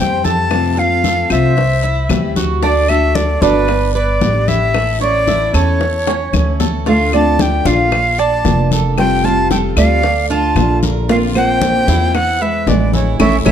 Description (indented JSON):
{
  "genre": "latin, Cuban son and guajira",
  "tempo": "114 BPM",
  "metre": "4/4",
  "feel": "straight",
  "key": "D minor",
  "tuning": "A4 = 440 Hz",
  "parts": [
    { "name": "breathy bright jazz flute", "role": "melody", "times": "0.0-13.5 s", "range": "B4 to A5", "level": "-17 LUFS", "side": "left 1 dB", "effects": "none" },
    { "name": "fingerpicked steel-string acoustic guitar", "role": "accompaniment", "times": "0.0-13.5 s", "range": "C3 to G4", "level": "-20 LUFS", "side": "left 3 dB", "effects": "none" },
    { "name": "Cuban tres", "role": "arpeggios", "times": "0.0-13.5 s", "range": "C#4 to F5", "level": "-21 LUFS", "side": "right 7 dB", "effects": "tape echo" },
    { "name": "upright bass", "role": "bass", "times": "0.0-13.5 s", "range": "F1 to F2", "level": "-17 LUFS", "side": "equal", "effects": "none" },
    { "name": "congas", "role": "percussion", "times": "0.2-13.5 s", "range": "none", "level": "-22 LUFS", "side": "left 3 dB", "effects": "none" },
    { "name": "guiro", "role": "percussion", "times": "0.2-13.5 s", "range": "none", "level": "-31 LUFS", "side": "left 6 dB", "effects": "none" },
    { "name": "bongos", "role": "percussion", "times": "0.5-13.5 s", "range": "none", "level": "-23 LUFS", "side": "left 7 dB", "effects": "none" },
    { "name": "claves", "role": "percussion", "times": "0.5-13.5 s", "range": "none", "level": "-28 LUFS", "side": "left 7 dB", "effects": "none" },
    { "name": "flamenco guitar", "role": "second line", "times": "6.9-13.5 s", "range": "E3 to D4", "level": "-19 LUFS", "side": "right 4 dB", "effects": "none" }
  ],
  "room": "light reverb",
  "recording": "dark, warm production",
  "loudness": "-12 LUFS",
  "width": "side -9 dB against mid",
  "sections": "0.0-13.5 A section",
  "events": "drum fill 6.1-6.9; band accent 13.2-13.5",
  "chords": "0.0 C; 0.5 F; 1.6 C; 2.6 D; 3.7 G; 4.7 A; 6.9 Dm; 7.9 Bb; 9.0 Fadd9; 10.0 Dm; 11.1 Bbadd9; 12.1 E7"
}